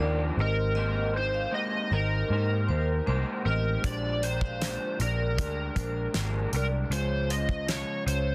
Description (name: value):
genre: indie pop, bedroom pop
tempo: 78 BPM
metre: 4/4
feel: straight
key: unclear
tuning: A4 = 437 Hz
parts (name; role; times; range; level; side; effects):
- overdriven slide guitar; melody; 0.0-8.3 s; Bb4 to Eb5; -34 LUFS; equal; analog chorus, plate reverb, delay
- vibraphone with medium hard mallets; second line; 0.0-8.3 s; C5 to F5; -41 LUFS; equal; lush chorus, plate reverb, delay
- electric guitar through a small old amp; accompaniment; 0.0-8.3 s; Bb2 to C5; -38 LUFS; equal; analog chorus, vibrato effect, plate reverb
- reed electric piano; accompaniment; 0.0-8.3 s; G3 to F5; -44 LUFS; equal; plate reverb
- vintage muted picked electric bass; bass; 0.0-8.3 s; Ab1 to Ab2; -31 LUFS; equal; none
- damped 70s drum kit; drums; 3.8-8.3 s; hi-hat, kick drum, snare drum; -34 LUFS; equal; none
room: moderate studio ambience, RT60 0.5 s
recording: dense, heavily limited modern master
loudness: -28 LUFS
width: mono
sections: 0.0-8.3 A section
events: none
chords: 0.4 Abmaj9; 3.8 Bb13; 6.9 Dbmaj7